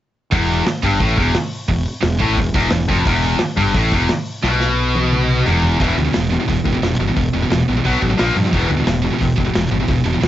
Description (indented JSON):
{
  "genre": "heavy metal",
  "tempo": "175 BPM",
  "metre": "4/4",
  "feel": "straight",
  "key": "E minor",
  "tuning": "A4 = 443 Hz",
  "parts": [
    { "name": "distorted electric guitar", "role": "riff", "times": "0.3-10.3 s", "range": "E2 to B3", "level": "-20 LUFS", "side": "left 6 dB", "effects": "overdrive, cassette tape" },
    { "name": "scooped high-gain guitar", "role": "riff", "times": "0.3-10.3 s", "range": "E2 to B3", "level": "-20 LUFS", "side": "right 6 dB", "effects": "distortion, cassette tape" },
    { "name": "fuzz fingered electric bass", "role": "bass", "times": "0.3-10.3 s", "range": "E1 to G2", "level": "-20 LUFS", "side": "equal", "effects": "overdrive" },
    { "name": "modern studio drum kit", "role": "drums", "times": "0.3-10.3 s", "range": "hi-hat, kick drum, snare drum, toms", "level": "-21 LUFS", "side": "equal", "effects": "cassette tape" }
  ],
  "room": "little or no reverb",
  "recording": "home recording on cassette, nothing above 7.7 kHz",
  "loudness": "-15 LUFS",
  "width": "side -13 dB against mid",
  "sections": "0.3-5.8 A section; 5.8-10.3 B section",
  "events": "drum fill 4.4-5.8",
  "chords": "0.3 Em; 5.8 E5; 7.8 B5; 8.2 A#5; 8.5 E5",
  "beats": "| 0.32 0.66 1.01 1.35 | 1.69 2.03 2.38 2.72 | 3.06 3.40 3.74 4.09 | 4.43 4.77 5.11 5.46 | 5.80 6.14 6.48 6.82 | 7.17 7.51 7.85 8.19 | 8.53 8.87 9.21 9.55 | 9.89 10.23"
}